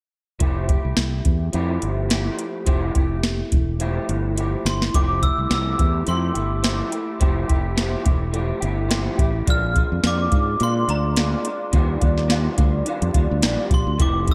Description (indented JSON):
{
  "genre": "indie pop, bedroom pop",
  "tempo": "106 BPM",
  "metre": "4/4",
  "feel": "swing 55% on 16ths",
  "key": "F major",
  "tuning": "A4 = 440 Hz",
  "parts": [
    { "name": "electric guitar through a small old amp", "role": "accompaniment", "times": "0.4-14.3 s", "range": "Bb2 to G4", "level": "-28 LUFS", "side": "equal", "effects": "ensemble chorus, warbly pitch drift" },
    { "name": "fretless electric bass", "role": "bass", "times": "0.4-14.3 s", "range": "E1 to Bb2", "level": "-26 LUFS", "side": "equal", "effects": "none" },
    { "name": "soft vintage rhythm box", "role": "drums", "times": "0.4-14.3 s", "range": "hi-hat, kick drum, snare drum", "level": "-23 LUFS", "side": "equal", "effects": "none" },
    { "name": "glockenspiel with brass mallets", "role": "melody", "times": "4.7-14.3 s", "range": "Bb5 to F6", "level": "-29 LUFS", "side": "equal", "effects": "ensemble chorus, delay" }
  ],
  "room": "moderate lush hall reverb, RT60 1.5 s, digital ambience",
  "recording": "big arena sound",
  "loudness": "-21 LUFS",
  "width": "mono",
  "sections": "0.4-4.9 A section; 4.9-14.3 B section",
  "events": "drum fill 4.4-4.9",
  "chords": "0.4 Fmaj9; 9.5 Bb7; 11.7 Ebmaj9"
}